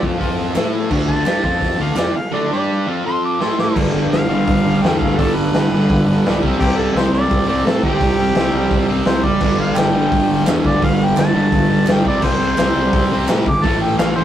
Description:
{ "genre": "garage rock duo or trio", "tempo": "170 BPM", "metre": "4/4", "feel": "straight", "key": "unclear", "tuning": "A4 = 442 Hz", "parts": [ { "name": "fuzz guitar", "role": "riff", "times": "0.0-14.2 s", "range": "G2 to A4", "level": "-17 LUFS", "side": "right 1 dB", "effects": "distortion" }, { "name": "fuzz fingered electric bass", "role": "bass", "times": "0.0-14.2 s", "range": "F#1 to A2", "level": "-23 LUFS", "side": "equal", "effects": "overdrive" }, { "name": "raw garage drum kit", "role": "drums", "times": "0.0-14.1 s", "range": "crash cymbal, hi-hat, kick drum, snare drum", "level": "-20 LUFS", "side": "equal", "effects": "none" }, { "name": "group handclap", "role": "percussion", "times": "0.6-2.1, 9.8-14.1 s", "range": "none", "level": "-31 LUFS", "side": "right 2 dB", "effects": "none" }, { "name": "warm harmonica", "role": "melody", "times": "1.1-14.2 s", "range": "G4 to D6", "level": "-21 LUFS", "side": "left 1 dB", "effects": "overdrive" } ], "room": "light reverb", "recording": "rough rehearsal-room recording", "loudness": "-14 LUFS", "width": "side -11 dB against mid", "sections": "0.0-3.8 A section; 3.8-14.2 B section", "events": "drum fill 3.4-3.8; harmonica solo 3.8-14.2", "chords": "0.0 F5; 0.6 A5; 0.9 D5; 1.4 F5; 1.8 D5; 2.5 G5; 2.9 F5; 3.4 A5; 3.8 G; 6.4 C5; 9.4 G5; 12.1 C5; 13.6 A5", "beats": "0.20 0.55 | 0.91 1.27 1.62 1.98 | 2.34 2.69 3.05 3.41 | 3.76 4.12 4.47 4.83 | 5.18 5.54 5.89 6.24 | 6.60 6.95 7.30 7.66 | 8.01 8.36 8.71 9.06 | 9.42 9.77 10.12 10.47 | 10.82 11.18 11.53 11.88 | 12.23 12.59 12.94 13.29 | 13.64 13.99" }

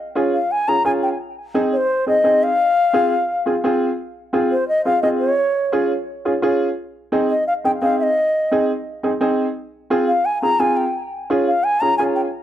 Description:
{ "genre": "latin", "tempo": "172 BPM", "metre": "4/4", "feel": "straight", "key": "F minor", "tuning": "A4 = 440 Hz", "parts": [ { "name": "warm upright piano", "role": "accompaniment", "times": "0.2-12.2 s", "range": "C4 to Ab4", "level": "-19 LUFS", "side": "right 1 dB", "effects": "none" }, { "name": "reedy bansuri", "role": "melody", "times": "0.3-12.2 s", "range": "C5 to Bb5", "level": "-18 LUFS", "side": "left 1 dB", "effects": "analog delay" } ], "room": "wet small room reverb, RT60 0.5 s", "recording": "dark, warm production, faint mains hum", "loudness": "-16 LUFS", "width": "side -11 dB against mid", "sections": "0.0-4.0 A section; 4.0-12.4 A section", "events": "none", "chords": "0.0 Db; 1.2 Ab; 2.6 Fm; 5.4 Db; 6.8 Ab; 9.6 Fm; 10.9 Db", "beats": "0.16 0.51 0.86 | 1.21 1.55 1.90 2.25 | 2.60 2.94 3.29 3.64 | 3.99 4.34 4.69 5.03 | 5.38 5.73 6.08 6.43 | 6.78 7.12 7.47 7.82 | 8.17 8.52 8.86 9.21 | 9.56 9.91 10.26 10.60 | 10.95 11.30 11.64 11.99" }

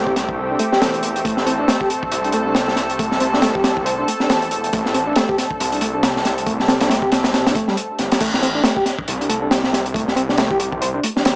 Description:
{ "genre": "breakbeat, breaks", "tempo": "138 BPM", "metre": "4/4", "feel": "swing 58% on 16ths", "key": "A minor", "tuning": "A4 = 438 Hz", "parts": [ { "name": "lush unison pad", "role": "sustained chords", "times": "0.0-8.2 s", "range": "A3 to A4", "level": "-22 LUFS", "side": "equal", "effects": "chorus, vintage 12-bit sampler grit, sidechain pumping" }, { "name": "mellow reed electric piano", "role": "riff", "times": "0.0-11.2 s", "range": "G3 to A4", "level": "-22 LUFS", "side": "equal", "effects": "tremolo, tape echo" }, { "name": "detuned saw bass", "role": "bass", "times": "0.0-11.4 s", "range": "E1 to C2", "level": "-24 LUFS", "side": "equal", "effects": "none" }, { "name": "crunchy breakbeat drum kit", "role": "drums", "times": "0.1-11.4 s", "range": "crash cymbal, hi-hat, kick drum, snare drum", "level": "-19 LUFS", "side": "equal", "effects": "none" }, { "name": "soft struck synth lead", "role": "melody", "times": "2.3-11.0 s", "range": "G4 to C5", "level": "-27 LUFS", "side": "equal", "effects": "chorus, telephone sound, tape echo" } ], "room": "light reverb", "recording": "dry, gritty hardware recording, vinyl crackle, small speaker sound", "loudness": "-16 LUFS", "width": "side -27 dB against mid", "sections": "0.0-8.2 A section; 8.2-11.4 B section", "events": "drop 8.2-11.4", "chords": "0.0 Am7; 8.2 Am", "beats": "0.38 0.81 | 1.25 1.69 2.12 2.55 | 2.99 3.42 3.86 4.29 | 4.73 5.16 5.60 6.03 | 6.47 6.90 7.34 7.77 | 8.21 8.64 9.08 9.51 | 9.95 10.38 10.81 11.25" }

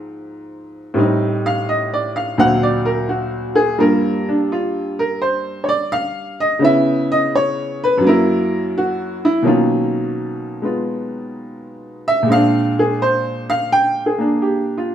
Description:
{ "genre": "solo jazz", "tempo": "85 BPM", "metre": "4/4", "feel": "swing 69% on 8ths", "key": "unclear", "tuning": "A4 = 440 Hz", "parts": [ { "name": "clear upright piano", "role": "solo", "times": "0.0-14.9 s", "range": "D2 to G5", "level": "-16 LUFS", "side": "equal", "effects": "none" } ], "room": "moderate stone room reverb, RT60 1.2 s", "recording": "band playing live in one room", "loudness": "-15 LUFS", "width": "side -10 dB against mid", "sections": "0.0-14.9 A section", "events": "upright piano solo 0.0-14.9", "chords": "0.0 Ab69; 1.0 Am7b5; 2.4 D7alt; 3.8 Gm7; 6.6 Dbm7; 8.0 Gb7; 9.4 Bmaj9#11; 12.3 Bb9", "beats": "0.25 | 0.96 1.66 2.37 3.08 | 3.78 4.49 5.20 5.90 | 6.61 7.32 8.02 8.73 | 9.44 10.15 10.85 11.56 | 12.27 12.98 13.69 14.40" }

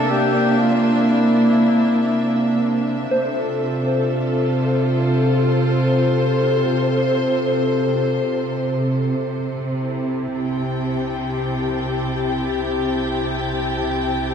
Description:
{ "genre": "ambient", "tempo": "free time", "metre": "none", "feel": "none", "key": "C mixolydian", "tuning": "A4 = 439 Hz", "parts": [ { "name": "warm flugelhorn", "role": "melody", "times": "0.0-2.6 s", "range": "E4 to G4", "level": "-25 LUFS", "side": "left 2 dB", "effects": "tape echo" }, { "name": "dark chamber string section", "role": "sustained chords", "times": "0.0-14.3 s", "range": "C3 to G5", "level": "-18 LUFS", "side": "equal", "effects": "none" }, { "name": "soft synth bell", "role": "arpeggios", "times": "3.1-14.3 s", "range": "D4 to C5", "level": "-28 LUFS", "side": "left 1 dB", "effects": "none" }, { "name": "analog drone", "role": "drone", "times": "3.1-14.3 s", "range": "C3 to C4", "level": "-24 LUFS", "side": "right 1 dB", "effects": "chorus" }, { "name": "warm sub bass", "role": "bass", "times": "9.2-14.3 s", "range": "C2", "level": "-36 LUFS", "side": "equal", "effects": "none" }, { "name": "wind-like tuned noise texture", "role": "texture", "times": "9.8-14.3 s", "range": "G4 to A5", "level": "-29 LUFS", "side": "left 5 dB", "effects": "built-in reverb" } ], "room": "wet scoring stage reverb, RT60 2.1 s", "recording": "dark, warm production", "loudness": "-17 LUFS", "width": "side -7 dB against mid", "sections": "0.0-9.2 A section; 9.2-14.3 B section", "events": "fade-in on sub bass 9.2-14.3", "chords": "0.0 C7; 3.1 F/C; 9.2 C", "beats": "free time" }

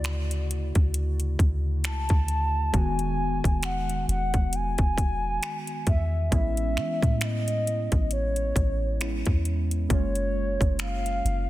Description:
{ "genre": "contemporary R&B", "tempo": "67 BPM", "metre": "4/4", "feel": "swing 58% on 16ths", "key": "unclear", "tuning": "A4 = 440 Hz", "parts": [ { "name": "hollow clarinet-like synth lead", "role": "melody", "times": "0.0-11.5 s", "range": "C#5 to A5", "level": "-31 LUFS", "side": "equal", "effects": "chorus, tape echo" }, { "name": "muted felt-like synth keys", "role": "accompaniment", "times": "0.0-11.5 s", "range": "C#3 to F#4", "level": "-34 LUFS", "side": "right 1 dB", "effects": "chorus" }, { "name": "soft 808-style bass", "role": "bass", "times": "0.0-11.5 s", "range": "E1 to E3", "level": "-27 LUFS", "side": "equal", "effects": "none" }, { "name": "trap drum kit", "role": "drums", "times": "0.0-11.5 s", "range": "finger snaps, hi-hat, kick drum", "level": "-26 LUFS", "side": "equal", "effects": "soft clipping on snare" } ], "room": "digital ambience", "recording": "dense, heavily limited modern master", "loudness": "-23 LUFS", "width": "side -16 dB against mid", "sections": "0.0-11.5 A section", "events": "none", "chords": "0.0 Dmaj9; 2.7 Emaj9; 6.3 Amaj9; 9.9 F#maj9", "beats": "0.05 0.95 1.84 | 2.74 3.63 4.53 5.42 | 6.32 7.21 8.11 9.01 | 9.90 10.80" }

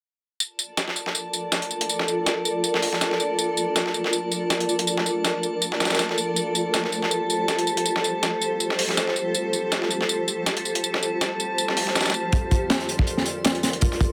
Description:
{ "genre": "drum and bass, jungle", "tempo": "161 BPM", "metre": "4/4", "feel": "swing 55% on 16ths", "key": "unclear", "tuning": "A4 = 440 Hz", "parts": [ { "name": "dusty soul sampler-style drum kit", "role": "drums", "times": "0.4-14.1 s", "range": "hi-hat, snare drum, tambourine", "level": "-26 LUFS", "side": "equal", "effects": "high-pass filter on perc, high-pass filter on snare, high-pass filter on hats" }, { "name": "drifting glass-harmonics texture", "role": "texture", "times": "0.7-14.1 s", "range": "A5 to C6", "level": "-34 LUFS", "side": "equal", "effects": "chorus, built-in reverb" }, { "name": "crunchy breakbeat drum kit", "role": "drums", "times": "12.3-14.1 s", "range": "hi-hat, kick drum, snare drum", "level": "-24 LUFS", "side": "equal", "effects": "none" } ], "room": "light reverb, small room ambience", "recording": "none", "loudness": "-24 LUFS", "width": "mono", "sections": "0.4-14.1 A section", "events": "none", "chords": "none", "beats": "| 0.40 0.77 1.15 1.52 | 1.89 2.26 2.64 3.01 | 3.38 3.75 4.13 4.50 | 4.87 5.25 5.62 5.99 | 6.36 6.74 7.11 7.48 | 7.85 8.23 8.60 8.97 | 9.35 9.72 10.09 10.46 | 10.84 11.21 11.58 11.95 | 12.33 12.70 13.07 13.44 | 13.82" }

